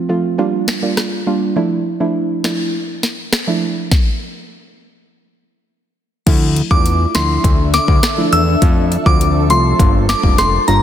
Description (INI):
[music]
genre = dancehall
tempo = 102 BPM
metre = 4/4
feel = straight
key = D minor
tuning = A4 = 440 Hz
[part]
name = soft round pluck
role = accompaniment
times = 0.0-10.8 s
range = F3 to F4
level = -18 LUFS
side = right 3 dB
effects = chorus
[part]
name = afro-pop drum kit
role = drums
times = 0.7-10.8 s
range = crash cymbal, finger snaps, hi-hat, kick drum, rim click, snare drum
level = -16 LUFS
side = left 1 dB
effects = none
[part]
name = granular cloud pad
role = sustained chords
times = 7.1-10.8 s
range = D4 to A5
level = -22 LUFS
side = left 2 dB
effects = built-in reverb, sidechain pumping
[part]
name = fat analog bass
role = bass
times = 6.3-10.8 s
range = F1 to F2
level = -16 LUFS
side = left 1 dB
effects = none
[part]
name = glassy synth bell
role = melody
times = 6.7-10.8 s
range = Bb5 to E6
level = -17 LUFS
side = left 1 dB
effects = chorus, tape echo
[sound]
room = light reverb, digital ambience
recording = dense, heavily limited modern master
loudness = -13 LUFS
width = side -10 dB against mid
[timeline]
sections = 0.0-6.3 A section; 6.3-10.8 B section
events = stop 3.9-6.3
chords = 0.4 Gm7; 1.6 Dmadd9; 3.9 N.C.; 6.3 Dmadd9; 8.6 F; 9.8 Gm7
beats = 0.39 0.97 | 1.56 2.15 2.74 3.33 | 3.92 4.50 5.09 5.68 | 6.27 6.86 7.44 8.03 | 8.62 9.21 9.80 10.38